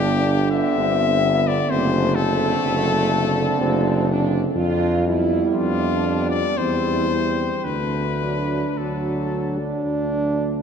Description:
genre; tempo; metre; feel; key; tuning
classical, hymn-like piece for brass band; 53-64 BPM; 3/4; rubato; G major; A4 = 439 Hz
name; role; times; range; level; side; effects
warm cornet; melody; 0.0-9.9 s; F4 to E5; -24 LUFS; left 7 dB; none
warm French horn section; second line; 0.0-10.4 s; A3 to F4; -26 LUFS; right 5 dB; none
warm euphonium; accompaniment; 0.0-10.6 s; B3 to D4; -29 LUFS; equal; none
warm trombone; accompaniment; 0.0-10.6 s; D3 to D4; -27 LUFS; right 3 dB; none
warm tuba; bass; 0.0-10.6 s; F#1 to F2; -23 LUFS; equal; none
room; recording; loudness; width
wet church reverb, RT60 3.8 s; dark, warm production; -18 LUFS; side -7 dB against mid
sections
0.0-10.6 A section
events
none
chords
0.0 G; 1.7 D7/F#; 4.6 G7/F; 6.6 C/E; 7.7 D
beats
0.75 | 1.70 2.64 3.60 | 4.56 5.55 6.58 | 7.66 8.78 9.86

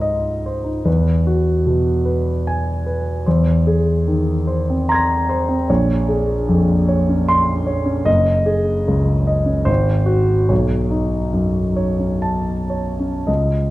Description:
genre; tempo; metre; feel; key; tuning
classical, impressionist solo piano; 52-78 BPM; 3/4; rubato; unclear; A4 = 440 Hz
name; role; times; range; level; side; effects
warm concert grand piano; solo; 0.0-13.7 s; Gb1 to Bb6; -15 LUFS; equal; none
room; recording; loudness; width
wet recital hall reverb, RT60 1.6 s; dark, warm production; -15 LUFS; side -17 dB against mid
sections
0.0-13.7 A section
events
none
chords
0.0 Dbmaj9; 0.9 Eadd9; 3.3 Abadd9/Fb; 5.7 Bbm9; 8.1 Gbsus2; 9.7 Ab7; 10.5 Cb9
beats
0.04 | 0.87 1.67 2.46 | 3.26 4.07 4.89 | 5.69 6.49 7.28 | 8.07 8.90 9.69 | 10.50 11.34 12.24 | 13.27

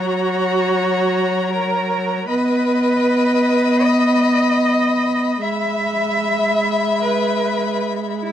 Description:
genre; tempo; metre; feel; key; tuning
classical, slow romantic movement for string quartet; 76 BPM; 4/4; rubato; unclear; A4 = 440 Hz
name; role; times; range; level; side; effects
warm violin; melody; 0.0-8.3 s; A#5 to B5; -26 LUFS; left 9 dB; none
rich violin; second line; 0.0-8.3 s; C#5 to E5; -24 LUFS; left 5 dB; none
dark viola; accompaniment; 0.0-8.3 s; F#3 to B3; -19 LUFS; right 1 dB; none
rich cello; bass; 0.0-8.3 s; E4 to E5; -20 LUFS; right 2 dB; none
room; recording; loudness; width
light reverb; dark, warm production; -16 LUFS; side -10 dB against mid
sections
0.0-8.3 A section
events
none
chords
0.0 F#; 2.3 B; 5.4 E/G#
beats
0.68 1.49 | 2.28 3.06 3.83 4.62 | 5.42 6.21 7.02 7.81

